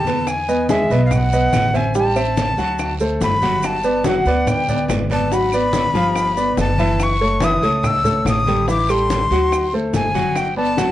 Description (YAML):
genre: Afro-Cuban jazz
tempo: 143 BPM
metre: 4/4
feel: straight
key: unclear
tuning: A4 = 442 Hz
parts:
  - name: breathy bright jazz flute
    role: melody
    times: 0.0-10.9 s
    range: E5 to E6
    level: -20 LUFS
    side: left 2 dB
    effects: none
  - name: warm baby grand piano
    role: accompaniment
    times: 0.0-10.9 s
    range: E3 to G#5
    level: -20 LUFS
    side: right 1 dB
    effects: none
  - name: upright bass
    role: bass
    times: 0.0-10.9 s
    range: F#1 to E2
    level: -22 LUFS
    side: equal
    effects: none
  - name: bongos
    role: percussion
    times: 0.1-10.9 s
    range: none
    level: -29 LUFS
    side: left 4 dB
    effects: none
  - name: congas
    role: percussion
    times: 0.1-10.9 s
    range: none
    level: -25 LUFS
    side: left 1 dB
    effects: none
  - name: guiro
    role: percussion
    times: 0.1-10.9 s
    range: none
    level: -36 LUFS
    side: right 5 dB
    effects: none
  - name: maracas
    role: percussion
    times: 0.1-10.9 s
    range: none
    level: -38 LUFS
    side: right 7 dB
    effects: none
  - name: claves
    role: percussion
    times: 0.3-10.6 s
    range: none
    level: -33 LUFS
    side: right 4 dB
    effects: none
room: moderate small room reverb, RT60 0.6 s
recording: worn, warbling old tape, cassette tape, warbly pitch drift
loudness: -15 LUFS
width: side -13 dB against mid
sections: 0.3-10.9 A section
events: drum fill 0.0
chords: 0.3 Emaj9; 2.0 Am7; 2.8 D7; 3.6 Gmaj9; 5.3 G#m7b5; 6.2 G7; 7.0 F#m7; 8.7 Am7; 9.5 D7; 10.4 Gmaj9